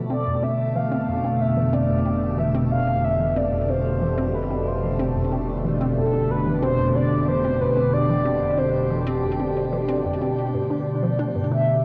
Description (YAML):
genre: ambient, sequencer-driven space music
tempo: 92 BPM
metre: 4/4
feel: straight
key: F lydian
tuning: A4 = 440 Hz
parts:
  - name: phased analog pad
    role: sustained chords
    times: 0.0-11.8 s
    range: B2 to G4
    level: -25 LUFS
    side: equal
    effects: phaser, chorus, cassette tape, shimmer reverb
  - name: fat analog bass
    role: bass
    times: 0.0-10.5 s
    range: F1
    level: -33 LUFS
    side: equal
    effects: none
  - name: mellow horn-like synth lead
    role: melody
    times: 0.1-11.8 s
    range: A4 to F5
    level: -28 LUFS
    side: equal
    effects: chorus, cassette tape, shimmer reverb, delay
  - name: hollow square pluck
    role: riff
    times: 0.1-11.6 s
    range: F2 to D4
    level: -32 LUFS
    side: equal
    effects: chorus, cassette tape, shimmer reverb, delay
room: wet spring reverb, RT60 2.6 s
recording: home recording on cassette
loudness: -22 LUFS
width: mono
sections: 0.0-10.5 A section; 10.5-11.8 B section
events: filter sweep on synth arpeggio sound 0.0-10.5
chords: 0.1 F; 10.5 G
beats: | 0.10 0.76 1.41 2.06 | 2.71 3.36 4.02 4.67 | 5.32 5.97 6.62 7.28 | 7.93 8.58 9.23 9.89 | 10.54 11.19 11.84